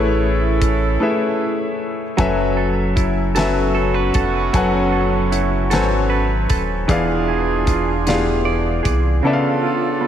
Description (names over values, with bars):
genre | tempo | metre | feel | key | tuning
slow six-eight R&B | 51 BPM (dotted quarters) | 6/8 | straight | F# minor | A4 = 440 Hz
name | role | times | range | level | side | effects
warm concert grand piano | accompaniment | 0.0-10.1 s | C#3 to G#5 | -19 LUFS | left 3 dB | none
warm horn section | stabs | 0.0-10.1 s | B3 to A4 | -24 LUFS | right 4 dB | diffuse ambient delay
rubbery square bass | bass | 0.0-9.2 s | D#1 to B#1 | -21 LUFS | equal | none
damped 70s drum kit | drums | 0.6-9.0 s | hi-hat, kick drum, snare drum | -22 LUFS | equal | none
semi-hollow electric guitar | second line | 2.2-10.1 s | C#3 to D5 | -23 LUFS | right 6 dB | diffuse ambient delay
room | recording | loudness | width
moderate lush hall reverb, RT60 2.8 s | dreamy mix soaked in reverb | -16 LUFS | side -10 dB against mid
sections
0.0-10.1 A section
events
break 1.0-2.2; drums muted 9.2-10.1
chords
0.0 Amaj9; 2.2 F#m11; 6.9 E7b9; 9.2 C#7b9b13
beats
1.01 | 2.19 3.36 | 4.54 5.72 | 6.89 8.07 | 9.25